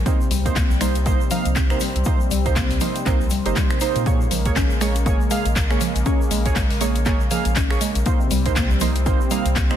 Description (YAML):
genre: afro house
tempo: 120 BPM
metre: 4/4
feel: swing 58% on 16ths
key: unclear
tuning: A4 = 441 Hz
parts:
  - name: warm analog pad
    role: sustained chords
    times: 0.0-9.8 s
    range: C3 to C4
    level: -29 LUFS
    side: left 2 dB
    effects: chorus, sidechain pumping
  - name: round analog bass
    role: bass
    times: 0.0-9.8 s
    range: G1 to Bb2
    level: -23 LUFS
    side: equal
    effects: sidechain pumping
  - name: mallet-like synth pluck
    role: arpeggios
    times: 0.1-9.7 s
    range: F3 to G4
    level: -27 LUFS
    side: equal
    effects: chorus, phaser, sidechain pumping, tape echo
  - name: warm analog keys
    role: stabs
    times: 0.1-9.8 s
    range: Bb3 to F5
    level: -26 LUFS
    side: right 6 dB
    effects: chorus, sidechain pumping, tape echo
  - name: afro-pop drum kit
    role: drums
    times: 0.1-9.8 s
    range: finger snaps, handclaps, hi-hat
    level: -28 LUFS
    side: left 2 dB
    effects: none
  - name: electronic kick drum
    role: drums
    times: 0.1-9.7 s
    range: none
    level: -21 LUFS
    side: equal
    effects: overdrive
  - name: egg shaker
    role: percussion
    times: 0.1-9.8 s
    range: none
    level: -35 LUFS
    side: left 5 dB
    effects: none
room: light reverb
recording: dense, heavily limited modern master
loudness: -17 LUFS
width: side -10 dB against mid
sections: 0.0-9.8 A section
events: none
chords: 0.1 Cm7; 4.1 Bbm7; 8.1 Cm7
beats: | 0.06 0.56 1.06 1.56 | 2.06 2.56 3.06 3.56 | 4.06 4.56 5.06 5.56 | 6.06 6.56 7.06 7.56 | 8.06 8.56 9.06 9.56